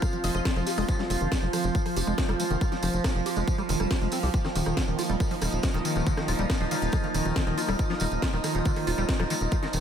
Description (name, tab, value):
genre	psychedelic trance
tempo	139 BPM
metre	4/4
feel	straight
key	unclear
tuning	A4 = 440 Hz
part	overtone-sweeping drone	sustained chords	0.0-9.8 s	F3	-32 LUFS	right 4 dB	chorus, built-in reverb, sidechain pumping
part	drum and bass drum kit	drums	0.0-9.8 s	hi-hat, rim click, snare drum	-34 LUFS	left 1 dB	overdrive, small room reverb
part	electronic kick drum	drums	0.0-9.6 s	none	-27 LUFS	equal	small room reverb
part	tambourine	percussion	0.0-9.8 s	none	-38 LUFS	right 2 dB	none
part	airy breathy pad	texture	0.0-9.8 s	Bb3 to C6	-34 LUFS	left 1 dB	chorus, sidechain pumping
part	liquid acid bass	riff	0.1-9.8 s	D3 to G4	-32 LUFS	moving between left 6 dB and right 4 dB	chorus, auto-pan, sidechain pumping, ping-pong delay
part	resonant blip pluck	second line	0.2-1.2, 5.7-6.9 s	Eb5 to F5	-41 LUFS	left 6 dB	phaser, sidechain pumping, high-pass filter, ping-pong delay
part	tight sequencer bass	bass	0.2-9.8 s	Eb1 to C2	-29 LUFS	equal	none
part	zap	sound effects	0.8-0.9 s	none	-44 LUFS	left 1 dB	none
room	light reverb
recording	none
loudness	-24 LUFS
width	side -8 dB against mid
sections	0.0-9.8 A section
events	filter sweep on acid bass 0.0-9.8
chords	0.0 F5; 4.3 Eb5